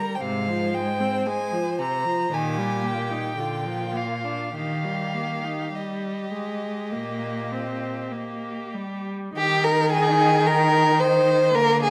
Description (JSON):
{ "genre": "classical, slow romantic movement for string quartet", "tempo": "48-58 BPM", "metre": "4/4", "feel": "rubato", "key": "Eb major", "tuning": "A4 = 440 Hz", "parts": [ { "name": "rich violin", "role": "melody", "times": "0.0-11.9 s", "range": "Eb5 to Bb5", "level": "-33 LUFS", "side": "equal", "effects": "none" }, { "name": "warm violin", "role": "second line", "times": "0.0-11.9 s", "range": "F4 to C5", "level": "-26 LUFS", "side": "equal", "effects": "none" }, { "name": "clear viola", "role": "accompaniment", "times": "0.0-11.9 s", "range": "C3 to Eb4", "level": "-32 LUFS", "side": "equal", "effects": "none" }, { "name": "clear cello", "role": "bass", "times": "0.2-11.9 s", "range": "Ab2 to Eb3", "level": "-31 LUFS", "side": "equal", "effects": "none" } ], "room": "moderate recital hall reverb, RT60 1.6 s", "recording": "close, detailed microphones", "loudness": "-24 LUFS", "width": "mono", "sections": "0.0-9.4 A section; 9.4-11.9 B section", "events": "none", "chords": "0.2 Fm/Ab; 2.3 Eb/Bb; 3.4 Bb; 4.6 Eb", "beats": "| 0.22 1.26 2.32 3.39 | 4.56 5.76 6.96 8.14 | 9.35 10.45 11.53" }